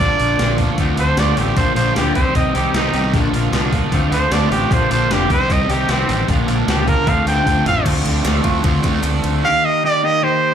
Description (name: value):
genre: indie rock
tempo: 153 BPM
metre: 4/4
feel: straight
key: unclear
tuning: A4 = 438 Hz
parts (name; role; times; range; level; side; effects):
- clear trumpet; melody; 0.0-10.5 s; C4 to G5; -19 LUFS; right 3 dB; slapback echo, digital delay
- biting overdriven guitar; riff; 0.0-9.4 s; Bb2 to Eb4; -23 LUFS; right 8 dB; lush chorus, slapback echo, digital delay
- clean electric guitar; riff; 0.0-10.5 s; Bb2 to G4; -22 LUFS; left 8 dB; analog chorus, slapback echo
- fuzz fingered electric bass; bass; 0.0-9.4 s; F1 to D2; -20 LUFS; equal; overdrive
- gated 80s digital drum machine; drums; 0.0-9.3 s; crash cymbal, hi-hat, kick drum, ride cymbal, snare drum, toms; -21 LUFS; equal; gated reverb, gated reverb snare, overdrive
- brassy analog pad; sustained chords; 7.8-10.5 s; G4 to C6; -33 LUFS; right 2 dB; none
- group handclap; percussion; 8.3-9.1 s; none; -32 LUFS; left 4 dB; none
room: little or no reverb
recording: live gig heard through the venue's PA, club reverb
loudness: -14 LUFS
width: side -8 dB against mid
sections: 0.0-7.9 A section; 7.9-9.4 B section; 9.4-10.5 C section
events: trumpet solo 0.0-7.9; drum fill 7.5-7.9; kick and snare drop out 9.0-9.4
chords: 0.0 Bb; 0.8 Dm7; 1.6 Bb; 2.2 Cm; 3.1 Bb; 3.9 Dm7; 4.7 Bb; 5.3 Cm; 6.3 Bb; 7.1 Dm7; 9.4 Eb